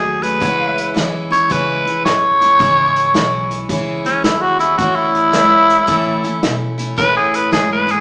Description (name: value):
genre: honky-tonk and classic country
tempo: 110 BPM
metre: 4/4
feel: swing 66% on 8ths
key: unclear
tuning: A4 = 440 Hz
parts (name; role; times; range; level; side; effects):
- raspy tenor saxophone; melody; 0.0-8.0 s; C#4 to C#5; -13 LUFS; equal; none
- picked steel-string acoustic guitar; accompaniment; 0.0-8.0 s; A2 to G#4; -21 LUFS; equal; none
- pedal steel guitar; sustained chords; 0.0-8.0 s; C#5 to E5; -29 LUFS; equal; none
- upright bass; bass; 0.0-8.0 s; G#1 to C#3; -27 LUFS; equal; none
- unplugged drum kit; drums; 0.2-8.0 s; hi-hat, kick drum, snare drum; -21 LUFS; equal; none
room: wet large studio reverb, RT60 1.2 s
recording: band playing live in one room, small speaker sound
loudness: -12 LUFS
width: side -28 dB against mid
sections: 0.0-8.0 A section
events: tenor saxophone solo 0.0-8.0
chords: 0.4 C#m; 4.8 A